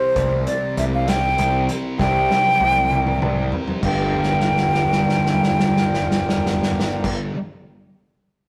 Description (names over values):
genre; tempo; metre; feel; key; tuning
psychedelic rock; 66 BPM (dotted quarters); 6/8; straight; G dorian; A4 = 440 Hz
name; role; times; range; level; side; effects
breathy mellow silver concert flute; melody; 0.0-7.1 s; C5 to G5; -23 LUFS; equal; none
overdriven combo organ; sustained chords; 0.0-7.1 s; E3 to Bb4; -36 LUFS; equal; none
thick fuzz guitar; riff; 0.0-7.4 s; G2 to C4; -28 LUFS; equal; distortion, phaser
fuzz picked electric bass; bass; 0.2-7.1 s; G1 to C2; -25 LUFS; equal; overdrive
vintage drum kit; drums; 0.2-7.2 s; crash cymbal, hi-hat, kick drum, snare drum, toms; -27 LUFS; equal; none
congas; percussion; 0.2-7.1 s; none; -40 LUFS; equal; none
room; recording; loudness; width
moderate stone room reverb, RT60 1.2 s; rough rehearsal-room recording, tube saturation; -19 LUFS; mono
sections
0.0-3.8 A section; 3.8-7.5 B section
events
drum fill 2.0-3.8, 4.1-7.0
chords
0.0 C7; 3.8 Gm7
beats
| 0.16 1.08 | 2.00 2.91 | 3.83 4.74 | 5.65 6.57